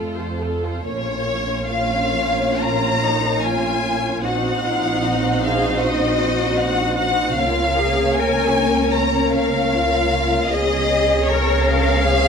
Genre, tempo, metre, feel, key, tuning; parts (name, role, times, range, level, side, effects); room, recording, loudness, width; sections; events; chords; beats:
classical, slow romantic movement for string orchestra; 61-79 BPM; 4/4; rubato; Bb minor; A4 = 435 Hz
rich studio violin section; melody; 0.0-12.3 s; A4 to Bb5; -21 LUFS; left 2 dB
warm studio violin section; second line; 0.0-12.3 s; F4 to Db5; -24 LUFS; left 3 dB
warm studio viola section; accompaniment; 0.0-12.3 s; Bb3 to A4; -24 LUFS; right 2 dB
dark studio double bass section; bass; 0.0-12.3 s; Bb1 to F2; -25 LUFS; right 2 dB
warm studio cello section; bass; 0.0-12.3 s; A3 to Bb4; -24 LUFS; left 1 dB
wet recital hall reverb, RT60 1.6 s; -17 LUFS; side -6 dB against mid
0.9-12.3 A section
0.0 F; 0.9 Bbm; 4.2 Cdim/Bb; 7.4 Bbm/Db; 10.5 Db7
| 0.86 1.70 2.59 3.42 | 4.23 5.04 5.82 6.59 | 7.38 8.17 8.94 9.71 | 10.49 11.27 12.03